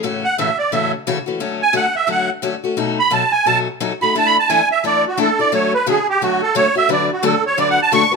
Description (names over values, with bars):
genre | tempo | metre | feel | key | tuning
jazz | 175 BPM | 4/4 | swing 60% on 8ths | A major | A4 = 440 Hz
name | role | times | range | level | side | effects
picked steel-string acoustic guitar | accompaniment | 0.0-8.2 s | A2 to B4 | -20 LUFS | left 6 dB | none
musette accordion | melody | 0.2-8.1 s | F#4 to C#6 | -15 LUFS | right 4 dB | none
room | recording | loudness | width
moderate studio reverb, RT60 1.0 s | minimal, uncompressed stereo recording | -14 LUFS | side -4 dB against mid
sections
0.0-8.2 A section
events
accordion solo 0.0-8.2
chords
0.0 A6; 1.4 Dmaj7; 2.8 B7; 4.1 E7sus4; 5.5 Dmaj7; 6.9 Bm7/D